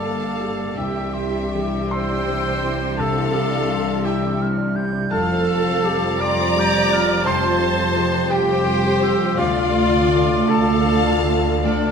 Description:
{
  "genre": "cinematic, emotional film score for orchestra",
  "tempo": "51-57 BPM (dotted quarters)",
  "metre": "6/8",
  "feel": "rubato",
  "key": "unclear",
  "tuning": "A4 = 444 Hz",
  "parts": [
    { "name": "rich studio violin section", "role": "melody", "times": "0.0-11.9 s", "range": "A4 to Bb5", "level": "-27 LUFS", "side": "left 4 dB", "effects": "none" },
    { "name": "bright clarinet", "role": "second line", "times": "0.0-11.9 s", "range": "D4 to D5", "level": "-26 LUFS", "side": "left 1 dB", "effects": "none" },
    { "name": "concert flute", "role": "second line", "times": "0.0-11.9 s", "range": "A5 to G6", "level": "-29 LUFS", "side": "left 1 dB", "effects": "none" },
    { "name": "rich studio violin section", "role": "second line", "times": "0.0-11.9 s", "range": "D5 to D6", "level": "-29 LUFS", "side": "left 2 dB", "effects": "none" },
    { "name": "dark grand piano", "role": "accompaniment", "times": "0.0-11.9 s", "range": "C2 to D6", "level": "-24 LUFS", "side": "equal", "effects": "none" },
    { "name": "rich studio viola section", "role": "accompaniment", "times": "0.0-11.9 s", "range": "D4 to D5", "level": "-26 LUFS", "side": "right 3 dB", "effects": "none" },
    { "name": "mellow French horn section", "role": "sustained chords", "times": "0.0-11.9 s", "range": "D3 to F4", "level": "-28 LUFS", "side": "left 4 dB", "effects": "none" },
    { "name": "concert harp", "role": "arpeggios", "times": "0.0-11.9 s", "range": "G2 to A5", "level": "-29 LUFS", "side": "left 6 dB", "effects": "none" },
    { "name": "rich studio cello section", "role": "bass", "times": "0.0-11.9 s", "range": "D2 to C3", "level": "-26 LUFS", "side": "right 3 dB", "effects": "none" },
    { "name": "rich studio double bass section", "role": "bass", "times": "0.0-11.9 s", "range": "F1 to D2", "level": "-28 LUFS", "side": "right 4 dB", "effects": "none" }
  ],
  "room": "wet scoring stage reverb, RT60 1.6 s",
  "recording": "none",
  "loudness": "-17 LUFS",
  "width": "side -6 dB against mid",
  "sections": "0.0-11.9 A section",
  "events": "none",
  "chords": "0.0 Gm; 0.8 Cadd9; 5.1 Fadd9; 9.4 Dm"
}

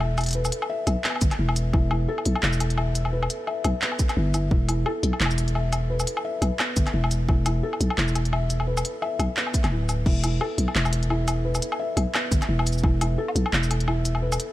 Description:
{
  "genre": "half-time drum and bass",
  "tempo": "173 BPM",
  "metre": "4/4",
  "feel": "swing 57% on 16ths, half-time",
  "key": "E minor",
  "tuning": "A4 = 439 Hz",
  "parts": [
    { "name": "felt-muted upright piano", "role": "arpeggios", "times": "0.0-14.5 s", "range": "B3 to E5", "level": "-30 LUFS", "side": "left 1 dB", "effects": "tape echo" },
    { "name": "growling 808-style bass", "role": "bass", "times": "0.0-14.4 s", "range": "D1 to B1", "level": "-24 LUFS", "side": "equal", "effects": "none" },
    { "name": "organic electronic drum kit", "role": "drums", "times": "0.0-14.5 s", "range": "crash cymbal, handclaps, hi-hat, shaker, woodblock", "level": "-28 LUFS", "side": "left 1 dB", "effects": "none" },
    { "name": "electronic kick drum", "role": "drums", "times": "1.2-1.8, 4.0-4.6, 6.8-7.4, 9.5-10.1, 12.3-12.9 s", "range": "none", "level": "-22 LUFS", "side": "equal", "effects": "none" }
  ],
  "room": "digital ambience",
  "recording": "none",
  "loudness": "-22 LUFS",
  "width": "side -15 dB against mid",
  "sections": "0.0-14.5 A section",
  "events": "none",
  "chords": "0.0 E5"
}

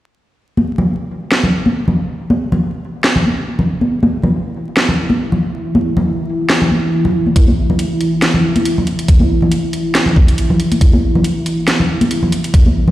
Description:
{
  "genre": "deep dubstep",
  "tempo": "139 BPM",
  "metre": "4/4",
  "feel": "swing 55% on 16ths, half-time",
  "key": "unclear",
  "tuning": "A4 = 441 Hz",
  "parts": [
    { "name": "deep dark ambient pad", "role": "sustained chords", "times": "3.4-12.9 s", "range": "E4", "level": "-18 LUFS", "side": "equal", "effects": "chorus, built-in reverb" },
    { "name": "congas", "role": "percussion", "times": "0.6-12.9 s", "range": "none", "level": "-16 LUFS", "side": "equal", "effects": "dub echo" },
    { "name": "garage drum kit", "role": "drums", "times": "1.3-12.6 s", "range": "hi-hat, snare drum", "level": "-18 LUFS", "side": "right 1 dB", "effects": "overdrive" },
    { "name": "electronic kick drum", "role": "drums", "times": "7.4-12.6 s", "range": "none", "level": "-9 LUFS", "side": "equal", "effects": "none" }
  ],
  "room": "moderate echo chamber reverb, RT60 2.0 s, digital ambience",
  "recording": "played on a big sound system in a bare room, stone room reverb, vinyl crackle",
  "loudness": "-12 LUFS",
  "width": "side -15 dB against mid",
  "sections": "0.5-12.9 A section",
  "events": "filter sweep on ambient pad 0.5-12.9",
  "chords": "none"
}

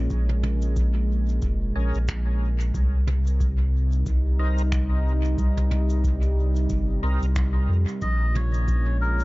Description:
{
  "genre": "ambient dub",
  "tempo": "91 BPM",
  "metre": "4/4",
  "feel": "swing 58% on 16ths",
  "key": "unclear",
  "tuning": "A4 = 442 Hz",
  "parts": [
    { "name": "warm analog pad", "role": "sustained chords", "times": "0.0-9.2 s", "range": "Bb2 to Bb4", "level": "-31 LUFS", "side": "equal", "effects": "chorus" },
    { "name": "soft dub sub bass", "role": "bass", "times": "0.0-9.2 s", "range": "F1 to F2", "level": "-22 LUFS", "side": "equal", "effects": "none" },
    { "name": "electronic kick drum", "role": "drums", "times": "0.1-8.8 s", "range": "none", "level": "-28 LUFS", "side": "equal", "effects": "none" },
    { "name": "jazz brush drum kit", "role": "drums", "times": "0.1-9.2 s", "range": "cabasa, finger snaps, toms", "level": "-38 LUFS", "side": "right 1 dB", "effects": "dub echo" },
    { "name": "overdriven tonewheel organ", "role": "stabs", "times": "1.8-7.3 s", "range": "C4 to Bb4", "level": "-38 LUFS", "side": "right 1 dB", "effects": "chorus vibrato, slow rotary speaker, dub echo" },
    { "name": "melodica", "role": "melody", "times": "8.0-9.2 s", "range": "Bb4 to Eb5", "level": "-30 LUFS", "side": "left 1 dB", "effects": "dub echo" }
  ],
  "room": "little or no reverb",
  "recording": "echo-heavy mix, nothing above 7.5 kHz",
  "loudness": "-21 LUFS",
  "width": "side -20 dB against mid",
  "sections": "0.0-9.2 A section",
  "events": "none",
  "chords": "0.0 Bbm7; 2.7 Cm7; 8.0 Bbm7"
}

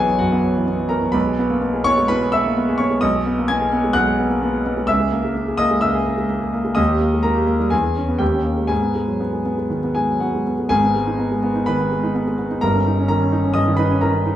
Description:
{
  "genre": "classical, virtuoso piano study",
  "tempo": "127 BPM",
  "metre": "4/4",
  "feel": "rubato",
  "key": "G# minor from 3.0 s",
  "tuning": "A4 = 439 Hz",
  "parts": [
    { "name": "warm concert grand piano", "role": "solo", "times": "0.0-14.4 s", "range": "G1 to G#6", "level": "-16 LUFS", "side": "equal", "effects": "none" }
  ],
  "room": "wet large studio reverb, RT60 0.9 s",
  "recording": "heard from further back in the room",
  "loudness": "-17 LUFS",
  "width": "side -12 dB against mid",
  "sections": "0.0-10.7 A section; 10.7-14.4 B section",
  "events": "none",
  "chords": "0.0 B5; 1.1 E/B; 3.0 G#m/B; 4.9 A#m7b5/C#; 6.8 D#; 7.7 C#m/E; 8.2 D#7; 8.7 G#m; 12.6 D#7/G"
}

